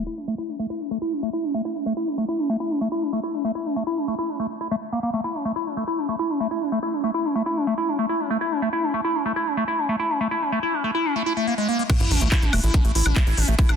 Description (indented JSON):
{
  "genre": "psychedelic trance",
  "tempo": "142 BPM",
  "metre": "4/4",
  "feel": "straight",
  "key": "A major",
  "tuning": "A4 = 444 Hz",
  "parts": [
    { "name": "liquid acid bass", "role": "riff", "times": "0.0-13.8 s", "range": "G#3 to E4", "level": "-23 LUFS", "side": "equal", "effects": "phaser, auto-pan, sidechain pumping, ping-pong delay" },
    { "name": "sub drop", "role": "sound effects", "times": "0.0-0.1, 11.9-13.6 s", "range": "none", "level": "-30 LUFS", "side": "right 1 dB", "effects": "none" },
    { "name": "drum and bass drum kit", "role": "drums", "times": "11.9-13.8 s", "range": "crash cymbal, handclaps, hi-hat, woodblock", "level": "-26 LUFS", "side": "left 2 dB", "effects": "none" },
    { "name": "electronic kick drum", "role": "drums", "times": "11.9-13.7 s", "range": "none", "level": "-19 LUFS", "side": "equal", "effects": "none" },
    { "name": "tight sequencer bass", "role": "bass", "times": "12.0-13.8 s", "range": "E1 to A1", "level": "-21 LUFS", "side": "equal", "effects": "none" }
  ],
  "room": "moderate lush hall reverb, RT60 2.1 s",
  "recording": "dense, heavily limited modern master, low-pass filter",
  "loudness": "-21 LUFS",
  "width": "side -7 dB against mid",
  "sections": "0.0-11.9 A section; 11.9-13.8 B section",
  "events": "filter sweep 0.0-11.9; drop 11.9-13.8; impact 11.9-13.6",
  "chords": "0.0 A5"
}